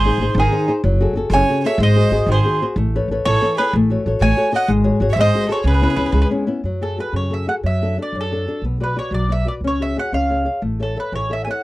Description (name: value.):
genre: italian folk, Italian serenade.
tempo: 117-128 BPM (dotted quarters).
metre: 6/8.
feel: rubato.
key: C# minor, F# minor from 6.6 s.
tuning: A4 = 440 Hz.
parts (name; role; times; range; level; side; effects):
mandolin; melody; 0.0-11.6 s; G#4 to G#5; -21 LUFS; right 1 dB; none.
clear violin; second line; 0.0-6.3 s; D#4 to D#5; -26 LUFS; right 5 dB; none.
flamenco guitar; accompaniment; 0.0-11.6 s; C#3 to E#5; -21 LUFS; left 3 dB; none.
upright bass; bass; 0.0-11.5 s; F#1 to F#2; -19 LUFS; equal; none.
room: light reverb.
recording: dry, close 1970s-style studio recording.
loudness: -16 LUFS.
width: side -18 dB against mid.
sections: 0.0-6.6 A section; 6.6-11.6 B section.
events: none.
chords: 0.0 G#; 0.8 F#madd9; 1.8 G#7; 2.8 Aadd9; 3.7 F#m/A; 4.7 G#7sus4; 5.2 G#7; 5.6 C#m7; 6.6 F#madd9; 7.6 D/F#; 8.6 Bm; 9.6 C#sus4; 10.1 C#; 10.6 A.